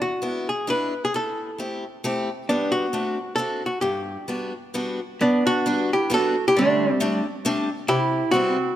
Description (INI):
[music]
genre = musette waltz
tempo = 134 BPM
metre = 3/4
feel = rubato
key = G major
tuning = A4 = 440 Hz
[part]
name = archtop guitar, miked and amplified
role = melody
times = 0.0-8.8 s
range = G3 to B4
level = -22 LUFS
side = equal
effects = none
[part]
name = picked steel-string acoustic guitar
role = accompaniment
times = 0.0-8.6 s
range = E2 to G4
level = -27 LUFS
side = left 1 dB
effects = none
[part]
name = clear clarinet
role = second line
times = 5.2-8.7 s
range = A3 to F#4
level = -27 LUFS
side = right 7 dB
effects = none
[sound]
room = moderate concert hall reverb, RT60 2.3 s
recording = close, detailed microphones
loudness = -21 LUFS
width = side -12 dB against mid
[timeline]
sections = 0.0-5.2 A section; 5.2-8.8 A section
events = none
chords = 0.0 E7; 1.1 Am7; 2.5 G; 2.9 D7; 3.8 Gmaj7; 6.6 D7sus4; 7.9 Cmaj7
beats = 0.22 0.68 | 1.15 1.60 2.05 | 2.49 2.93 3.38 | 3.82 4.27 4.74 | 5.20 5.66 6.11 | 6.56 7.00 7.45 | 7.89 8.33